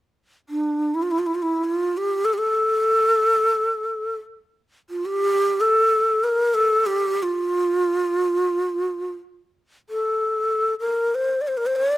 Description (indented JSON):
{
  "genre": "turkish",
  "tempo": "free time",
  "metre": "none",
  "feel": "none",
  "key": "unclear",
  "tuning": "A4 = 445 Hz",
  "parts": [
    { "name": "breathy low ney", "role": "melody", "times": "0.5-12.0 s", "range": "D4 to D5", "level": "-19 LUFS", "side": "equal", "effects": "slapback echo" }
  ],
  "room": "little or no reverb",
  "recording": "recorded outdoors, with no room sound",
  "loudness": "-19 LUFS",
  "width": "side -16 dB against mid",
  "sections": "0.2-12.0 A section",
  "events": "none",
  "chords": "none"
}